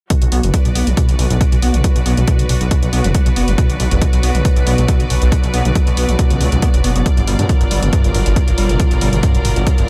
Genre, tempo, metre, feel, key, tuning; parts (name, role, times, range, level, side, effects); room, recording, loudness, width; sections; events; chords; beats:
driving peak-time techno; 138 BPM; 4/4; straight; B harmonic minor; A4 = 440 Hz
overdriven acid bass; riff; 0.1-9.8 s; G1 to B3; -23 LUFS; equal; lush chorus, cassette tape, sidechain pumping, digital delay
deep dark ambient pad; drone; 2.0-9.9 s; B2 to F#3; -28 LUFS; equal; chorus, built-in reverb, sidechain pumping
electronic hi-hat; drums; 0.1-9.9 s; -28 LUFS; equal
electronic kick drum; drums; 0.1-9.8 s; -17 LUFS; equal
clear symphonic string section; texture; 0.1-9.9 s; E#4 to D5; -26 LUFS; equal; sidechain pumping
detuned saw bass; bass; 0.2-9.8 s; F#1 to G2; -19 LUFS; equal; sidechain pumping
digital ambience; -15 LUFS; mono
0.1-9.9 A section
0.1 Bm; 7.1 Gm
| 0.10 0.54 0.97 1.41 | 1.84 2.28 2.71 3.15 | 3.58 4.01 4.45 4.88 | 5.32 5.75 6.19 6.62 | 7.06 7.49 7.93 8.36 | 8.80 9.23 9.67